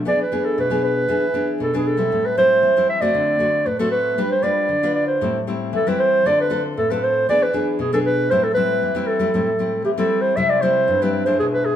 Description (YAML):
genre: samba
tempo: 116 BPM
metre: 4/4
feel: straight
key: A minor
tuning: A4 = 444 Hz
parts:
  - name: nylon-string guitar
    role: accompaniment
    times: 0.0-11.8 s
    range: G2 to B4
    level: -22 LUFS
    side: left 3 dB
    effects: none
  - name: mellow clarinet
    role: melody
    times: 0.1-11.8 s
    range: G4 to E5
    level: -18 LUFS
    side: right 2 dB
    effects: none
room: wet stone room reverb, RT60 1.2 s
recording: band playing live in one room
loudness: -17 LUFS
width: side -10 dB against mid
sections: 0.0-10.4 A section; 10.4-11.8 B section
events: none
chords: 0.1 E7; 2.1 Am7; 3.2 D7; 4.2 G7; 5.2 Am7; 6.2 Dm7; 7.3 E7; 8.3 Am7; 10.4 C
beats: | 0.06 0.57 1.09 1.60 | 2.12 2.63 3.15 3.67 | 4.18 4.70 5.21 5.73 | 6.25 6.76 7.28 7.79 | 8.31 8.82 9.34 9.86 | 10.37 10.89 11.40